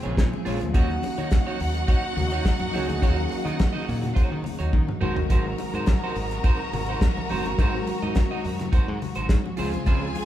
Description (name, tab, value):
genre	disco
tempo	105 BPM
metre	4/4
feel	straight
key	unclear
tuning	A4 = 440 Hz
part	warm studio violin section	second line	0.0-10.2 s	Gb4 to Bb5	-32 LUFS	right 1 dB	none
part	electric guitar at the edge of break-up	accompaniment	0.0-10.2 s	Eb4 to Eb5	-33 LUFS	right 4 dB	none
part	tine electric piano	accompaniment	0.0-10.2 s	C3 to Ab4	-31 LUFS	left 1 dB	overdrive, fast stereo tremolo
part	clear studio string section	sustained chords	0.0-10.2 s	C3 to Ab4	-36 LUFS	left 2 dB	none
part	damped 70s drum kit	drums	0.0-10.2 s	hi-hat, kick drum, snare drum, toms	-23 LUFS	equal	none
part	modern bright fingered electric bass	bass	0.1-10.1 s	Gb1 to Eb3	-30 LUFS	equal	none
part	congas	percussion	0.2-10.2 s	none	-36 LUFS	left 4 dB	none
room	moderate large studio reverb, RT60 1.1 s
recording	band playing live in one room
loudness	-22 LUFS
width	side -12 dB against mid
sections	0.0-10.2 A section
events	drum fill 4.7-5.3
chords	0.0 Bbm7; 0.7 Ebm7; 5.0 Ab7; 9.6 Dbmaj7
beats	0.17 | 0.74 1.31 1.88 2.45 | 3.02 3.59 4.16 4.73 | 5.30 5.87 6.44 7.01 | 7.58 8.15 8.73 9.30 | 9.87